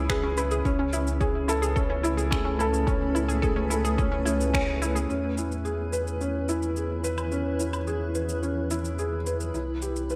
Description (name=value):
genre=piano and strings electronica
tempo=108 BPM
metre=4/4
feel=straight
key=E major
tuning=A4 = 440 Hz
part: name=granular cloud pad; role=sustained chords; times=0.0-10.2 s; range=A3 to G#5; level=-36 LUFS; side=equal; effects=built-in reverb, sidechain pumping
part: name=analog pluck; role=arpeggios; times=0.0-5.0 s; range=C#4 to B4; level=-35 LUFS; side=equal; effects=chorus, sidechain pumping, tape echo
part: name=felt-muted upright piano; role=riff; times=0.0-10.2 s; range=C#4 to C#5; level=-31 LUFS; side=equal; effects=tape echo
part: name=warm sub bass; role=bass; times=0.0-10.2 s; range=C2 to E2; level=-32 LUFS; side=equal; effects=sidechain pumping
part: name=electronic finger snaps, shaker and woodblock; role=drums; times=0.1-10.2 s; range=none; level=-37 LUFS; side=equal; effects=overdrive
part: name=electronic kick drum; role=drums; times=0.1-4.7 s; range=none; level=-30 LUFS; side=equal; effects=overdrive
room=moderate lush hall reverb, RT60 2.0 s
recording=none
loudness=-27 LUFS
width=mono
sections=0.0-5.1 A section; 5.1-10.2 B section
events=band accent 4.5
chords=0.0 C#m7; 0.7 Amaj7/C#; 5.1 E6; 9.5 Cmaj7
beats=0.10 | 0.65 1.21 1.76 2.32 | 2.88 3.43 3.99 4.54 | 5.10 5.65 6.21 6.76 | 7.32 7.88 8.43 8.99 | 9.54 10.10